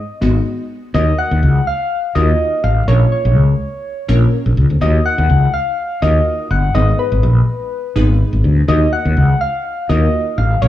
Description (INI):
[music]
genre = dance-pop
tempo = 124 BPM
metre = 4/4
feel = straight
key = Eb minor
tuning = A4 = 440 Hz
[part]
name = soft struck synth lead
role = melody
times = 0.0-10.7 s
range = Cb5 to Gb5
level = -19 LUFS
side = left 1 dB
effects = chorus, tape echo
[part]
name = glassy wavetable pluck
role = accompaniment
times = 0.2-10.7 s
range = Ab3 to Db5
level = -22 LUFS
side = left 1 dB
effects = chorus
[part]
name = mellow fretless electric bass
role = bass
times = 0.2-10.7 s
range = G1 to Eb2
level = -12 LUFS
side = equal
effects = none
[sound]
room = light reverb, digital ambience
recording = transformer saturation, cassette tape, studio ambience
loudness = -12 LUFS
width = side -13 dB against mid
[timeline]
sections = 0.9-10.7 A section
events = stop 0.5-0.9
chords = 0.0 Abm; 0.9 Ebmadd9; 2.9 Bbm; 4.8 Ebmadd9; 6.7 Abm; 8.7 Ebmadd9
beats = 0.46 | 0.94 1.43 1.91 2.40 | 2.88 3.36 3.85 4.33 | 4.81 5.30 5.78 6.27 | 6.75 7.23 7.72 8.20 | 8.69 9.17 9.65 10.14 | 10.62